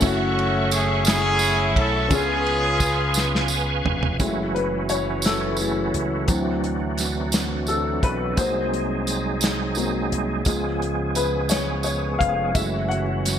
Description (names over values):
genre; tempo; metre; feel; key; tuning
slow gospel; 58 BPM (dotted quarters); 6/8; straight; F# minor; A4 = 440 Hz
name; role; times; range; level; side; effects
warm horn section; melody; 0.0-3.9 s; A3 to A4; -22 LUFS; left 1 dB; digital delay
dark upright piano; accompaniment; 0.0-13.4 s; C#3 to F#5; -26 LUFS; left 3 dB; lush chorus
bright tonewheel organ; sustained chords; 0.0-13.4 s; E3 to C#6; -26 LUFS; right 3 dB; fast rotary speaker, chorus vibrato
slap bass with an envelope filter; bass; 0.0-13.4 s; E#1 to D2; -27 LUFS; equal; none
warm soul drum kit; drums; 0.0-13.4 s; hi-hat, kick drum, ride cymbal, snare drum, toms; -25 LUFS; equal; gated reverb
tambourine; percussion; 0.0-13.4 s; none; -30 LUFS; right 5 dB; none
room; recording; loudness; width
moderate plate reverb, RT60 1.6 s, small room ambience; bright 1980s-style digital production; -20 LUFS; side -9 dB against mid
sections
0.0-4.2 A section; 4.2-13.4 B section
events
drum fill 3.1-4.2; upright piano solo 4.2-13.4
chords
0.0 F#m7; 2.1 C#7; 4.2 F#m7; 6.3 D7; 8.4 G#7/B#; 10.5 C#7; 12.5 F#m7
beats
| 0.02 1.06 | 2.11 3.15 | 4.19 5.24 | 6.28 7.33 | 8.37 9.42 | 10.46 11.51 | 12.55